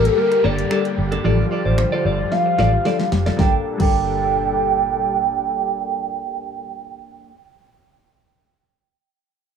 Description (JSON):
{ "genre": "dance-pop", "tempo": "112 BPM", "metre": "4/4", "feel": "straight", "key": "G minor", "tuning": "A4 = 440 Hz", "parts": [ { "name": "hollow clarinet-like synth lead", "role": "melody", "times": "0.0-7.1 s", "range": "A4 to G5", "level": "-20 LUFS", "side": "right 2 dB", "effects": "chorus, low-pass filter, plate reverb, digital delay" }, { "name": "filtered supersaw swell", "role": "sustained chords", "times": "0.0-6.7 s", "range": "Bb2 to A4", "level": "-27 LUFS", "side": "left 2 dB", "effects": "sidechain pumping, low-pass filter, plate reverb" }, { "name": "direct-recorded clean electric guitar", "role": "riff", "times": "0.0-7.3 s", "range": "Bb3 to D5", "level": "-28 LUFS", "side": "right 2 dB", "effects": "lush chorus, low-pass filter" }, { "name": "vintage muted fingered electric bass", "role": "bass", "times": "0.0-7.1 s", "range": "F1 to A1", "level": "-21 LUFS", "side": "equal", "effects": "sidechain pumping" }, { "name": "downlifter", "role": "sound effects", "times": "0.0-3.4 s", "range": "none", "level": "-37 LUFS", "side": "left 1 dB", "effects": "none" }, { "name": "pop drum kit", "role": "drums", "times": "0.1-3.9 s", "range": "crash cymbal, finger snaps, hi-hat, kick drum, snare drum", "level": "-22 LUFS", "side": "equal", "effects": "none" }, { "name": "mallet-like synth pluck", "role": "accompaniment", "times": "0.2-7.1 s", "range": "F3 to C5", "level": "-26 LUFS", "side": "left 4 dB", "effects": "chorus, low-pass filter, plate reverb" } ], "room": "moderate small room ambience, RT60 0.5 s", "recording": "rough home demo mix", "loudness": "-17 LUFS", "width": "side -7 dB against mid", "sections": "0.0-3.4 A section; 3.4-7.7 B section", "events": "drum fill 2.3-3.4", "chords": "0.0 Gmadd9; 1.2 Dm; 3.4 Gmadd9" }